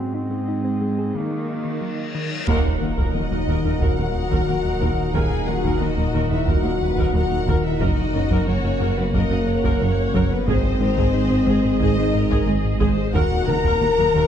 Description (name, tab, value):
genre	cinematic, hybrid orchestral and electronic film score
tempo	90 BPM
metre	4/4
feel	straight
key	Eb minor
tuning	A4 = 437 Hz
part	mellow duduk	melody	0.0-2.1 s	Bb3 to C4	-28 LUFS	left 1 dB	ping-pong delay
part	warbly tape-like pad	sustained chords	0.0-14.3 s	Bb2 to Bb5	-30 LUFS	left 1 dB	chorus, built-in reverb, phaser
part	rich symphonic cello section	bass	0.0-14.2 s	Eb2 to Eb3	-29 LUFS	right 3 dB	none
part	reverse cymbal and impact	sound effects	1.6-5.1 s	none	-34 LUFS	left 1 dB	none
part	thumb-piano-like synth pluck	arpeggios	0.1-14.2 s	Eb3 to Ab4	-30 LUFS	left 3 dB	none
part	rich symphonic violin section	second line	2.5-14.3 s	Bb4 to Bb5	-29 LUFS	left 2 dB	none
part	clear symphonic viola section	accompaniment	2.5-14.3 s	Ab4 to Gb5	-30 LUFS	right 1 dB	none
part	dark trombone section	sustained chords	2.5-14.3 s	Bb2 to Bb3	-30 LUFS	right 4 dB	none
part	warm French horn section	sustained chords	2.5-14.3 s	Bb3 to Bb4	-25 LUFS	left 4 dB	none
part	fat analog bass	riff	2.5-14.2 s	Eb2 to Ab3	-26 LUFS	left 2 dB	none
part	dark detuned saw bass	bass	2.5-14.3 s	Eb1 to Ab1	-27 LUFS	equal	none
part	rich symphonic double bass section	bass	2.5-14.2 s	Gb1 to Eb2	-28 LUFS	right 4 dB	none
part	taiko ensemble	drums	2.5-14.3 s	none	-26 LUFS	right 1 dB	none
part	warm symphonic violin section	melody	3.8-14.3 s	Gb4 to Eb5	-33 LUFS	left 5 dB	none
room	moderate scoring stage reverb, RT60 2.1 s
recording	dark, warm production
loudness	-18 LUFS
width	side -9 dB against mid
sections	0.0-2.5 A section; 2.5-14.3 A section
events	reverse cymbal 1.6-2.5; band accent 2.5-3.1; impact 2.5-5.1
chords	0.0 Ab; 1.1 Ebm; 7.8 Gb; 10.5 Ab; 13.1 Ebm